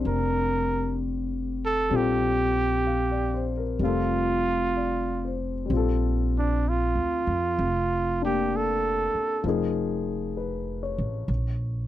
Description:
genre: jazz ballad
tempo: 64 BPM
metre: 4/4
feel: swing 68% on 8ths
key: Bb major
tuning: A4 = 440 Hz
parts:
  - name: warm grand piano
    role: accompaniment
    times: 0.0-11.9 s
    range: F3 to F5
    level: -29 LUFS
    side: left 7 dB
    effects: none
  - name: upright bass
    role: bass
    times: 0.0-11.9 s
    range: F1 to F2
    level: -28 LUFS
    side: right 1 dB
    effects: none
  - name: warm trumpet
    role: melody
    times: 0.1-9.5 s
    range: D4 to Bb4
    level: -26 LUFS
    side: right 3 dB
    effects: none
room: light reverb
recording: dry, close 1970s-style studio recording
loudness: -24 LUFS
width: side -13 dB against mid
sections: 0.0-5.7 A section; 5.7-11.9 B section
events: trumpet solo 5.7-11.9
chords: 0.0 Bb69; 9.4 Db13/F; 11.3 Bbm

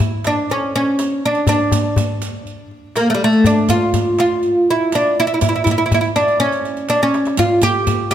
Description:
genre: Arabic maqam ensemble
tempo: 122 BPM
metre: 4/4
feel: straight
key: D maqam nahawand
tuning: A4 = 440 Hz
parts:
  - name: darbuka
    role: percussion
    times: 0.0-8.1 s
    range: none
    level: -20 LUFS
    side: left 2 dB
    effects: none
  - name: riq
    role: percussion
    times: 0.2-8.1 s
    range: none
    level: -27 LUFS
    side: right 8 dB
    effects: none
  - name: oud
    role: melody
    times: 0.3-8.1 s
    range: G3 to G4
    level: -15 LUFS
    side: equal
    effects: none
room: moderate concert hall reverb, RT60 2.2 s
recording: close, detailed microphones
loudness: -14 LUFS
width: side -10 dB against mid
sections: 0.0-8.1 A section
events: drum fill 6.9-7.4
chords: none

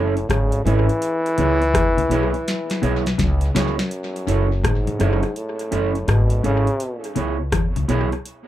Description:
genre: roots reggae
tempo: 83 BPM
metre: 4/4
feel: swing 64% on 16ths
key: F# minor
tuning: A4 = 440 Hz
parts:
  - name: warm trombone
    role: melody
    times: 0.0-7.1 s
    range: F#2 to E3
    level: -24 LUFS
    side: left 1 dB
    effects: tape echo
  - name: mellow electric guitar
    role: accompaniment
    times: 0.0-8.1 s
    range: B3 to C#5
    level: -26 LUFS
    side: right 5 dB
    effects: tape echo
  - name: clean electric guitar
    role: riff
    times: 0.0-8.0 s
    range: F#2 to E3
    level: -26 LUFS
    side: left 5 dB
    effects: tube saturation, ensemble chorus
  - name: upright bass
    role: bass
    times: 0.0-8.1 s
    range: F#1 to E2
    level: -21 LUFS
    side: equal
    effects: tube saturation
  - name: booming analog drum machine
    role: drums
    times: 0.2-8.5 s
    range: hi-hat, kick drum, rim click, snare drum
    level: -24 LUFS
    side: equal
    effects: overdrive, tape echo
room: light reverb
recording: rough home demo mix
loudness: -18 LUFS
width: side -13 dB against mid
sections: 0.0-3.9 A section; 3.9-8.5 B section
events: drum fill 2.5-3.9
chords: 0.0 F#m7; 1.0 C#m7; 3.9 F#m7; 6.8 C#m7

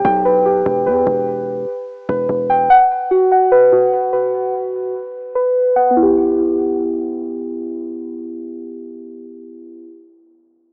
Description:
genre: hip hop, trap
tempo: 147 BPM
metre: 4/4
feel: half-time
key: E minor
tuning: A4 = 444 Hz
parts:
  - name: muted felt-like synth keys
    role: arpeggios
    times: 0.0-10.0 s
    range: B3 to G5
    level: -14 LUFS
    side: equal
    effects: chorus, cassette tape, tape echo
  - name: hard-hitting 808-style bass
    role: bass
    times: 0.0-2.7 s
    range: E1 to E2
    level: -23 LUFS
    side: equal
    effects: none
room: light reverb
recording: home recording on cassette, low-pass filter, small speaker sound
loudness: -13 LUFS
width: side -33 dB against mid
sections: 0.0-6.0 A section; 6.0-9.2 B section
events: filter sweep 0.0-6.0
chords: 0.0 Em; 2.7 B5; 6.0 Em

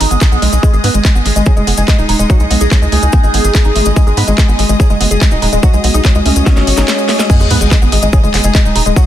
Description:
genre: psychedelic trance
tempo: 144 BPM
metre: 4/4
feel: straight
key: G# minor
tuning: A4 = 440 Hz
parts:
  - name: overtone-sweeping drone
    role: sustained chords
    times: 0.0-9.1 s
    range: G#3 to G#4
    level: -22 LUFS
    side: right 1 dB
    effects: chorus, built-in reverb, sidechain pumping
  - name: woody wave-folded pluck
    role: riff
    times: 0.0-9.0 s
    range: F#3 to G#4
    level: -19 LUFS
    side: moving between left 4 dB and right 6 dB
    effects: chorus, auto-pan, sidechain pumping, tape echo
  - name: tight sequencer bass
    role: bass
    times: 0.0-8.9 s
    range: D#1 to G#2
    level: -13 LUFS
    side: equal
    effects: none
  - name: garage drum kit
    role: drums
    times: 0.0-9.0 s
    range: crash cymbal, handclaps, hi-hat, snare drum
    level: -18 LUFS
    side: equal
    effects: none
  - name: rich studio string section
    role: texture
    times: 0.0-9.1 s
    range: G#3 to D#6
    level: -21 LUFS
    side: left 1 dB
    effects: sidechain pumping
  - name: cabasa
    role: percussion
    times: 0.1-9.0 s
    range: none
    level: -26 LUFS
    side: left 6 dB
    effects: none
  - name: electronic kick drum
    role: drums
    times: 0.2-9.0 s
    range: none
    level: -10 LUFS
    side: equal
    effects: none
  - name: overdriven synth lead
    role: melody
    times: 0.6-9.0 s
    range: G#3 to B4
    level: -19 LUFS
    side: equal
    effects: phaser, cassette tape, sidechain pumping, ping-pong delay
  - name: sub drop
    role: sound effects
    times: 7.4-9.0 s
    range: none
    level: -19 LUFS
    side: equal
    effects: none
room: little or no reverb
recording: dense, heavily limited modern master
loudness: -8 LUFS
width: side -12 dB against mid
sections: 0.0-7.3 A section; 7.3-9.1 B section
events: drum fill 6.5-7.3; drop 7.3-9.1; impact 7.3-9.0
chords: 0.0 G#5

